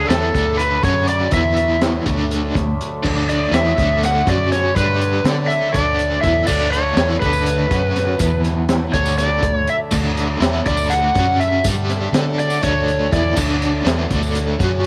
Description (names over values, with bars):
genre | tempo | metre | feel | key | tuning
psychedelic rock | 244 BPM (eighths) | 7/8 | straight | D major | A4 = 440 Hz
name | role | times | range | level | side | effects
overdriven slide guitar | melody | 0.0-13.4 s | A4 to F#5 | -22 LUFS | equal | tape echo
pedal harmonium | sustained chords | 0.0-14.9 s | C#3 to E5 | -34 LUFS | equal | none
biting overdriven guitar | riff | 0.0-14.9 s | D3 to D5 | -24 LUFS | equal | tremolo
vintage muted fingered electric bass | bass | 0.0-14.9 s | D2 to D3 | -24 LUFS | equal | none
overtone-sweeping drone | drone | 0.0-14.9 s | D2 | -34 LUFS | equal | chorus, built-in reverb
crunchy breakbeat drum kit | drums | 0.1-14.9 s | crash cymbal, hi-hat, kick drum, snare drum | -25 LUFS | equal | none
tambourine | percussion | 6.5-14.4 s | none | -36 LUFS | equal | none
room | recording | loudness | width
light reverb, small room ambience | none | -18 LUFS | mono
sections
0.0-14.9 A section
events
electric slide guitar solo 0.0-14.9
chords
0.0 D; 0.8 F#5; 1.3 E5; 2.1 D; 4.3 F#5; 4.8 G5; 5.2 D; 7.7 F#5; 8.2 E5; 8.9 D; 11.2 F#5; 11.6 G5; 12.1 D